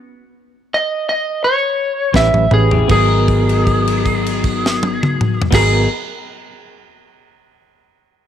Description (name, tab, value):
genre	straight-eighth soul blues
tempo	78-91 BPM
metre	4/4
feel	swing 54% on 16ths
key	G# minor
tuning	A4 = 439 Hz
part	electric slide guitar	melody	0.7-5.9 s	G#4 to E5	-17 LUFS	equal	none
part	reed electric piano	accompaniment	2.1-5.9 s	B3 to B4	-23 LUFS	right 12 dB	overdrive, fast tremolo
part	electric guitar through a small old amp	stabs	2.1-5.9 s	F#3 to A#4	-22 LUFS	left 10 dB	lush chorus
part	vintage muted fingered electric bass	bass	2.1-5.9 s	G#1 to A1	-17 LUFS	equal	none
part	tight funk drum kit	drums	2.1-5.7 s	crash cymbal, kick drum, snare drum, toms	-19 LUFS	equal	none
room	light reverb, small room ambience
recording	1960s-style stereo with parts hard left and right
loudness	-13 LUFS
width	side -9 dB against mid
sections	0.0-2.9 A section; 2.9-6.0 B section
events	slowing down 0.0-2.9; electric slide guitar solo 0.0-2.9; stop 0.0-2.1; drum fill 2.1-2.9; held note 2.9-5.5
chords	0.0 N.C.; 2.1 A7; 2.9 G#m9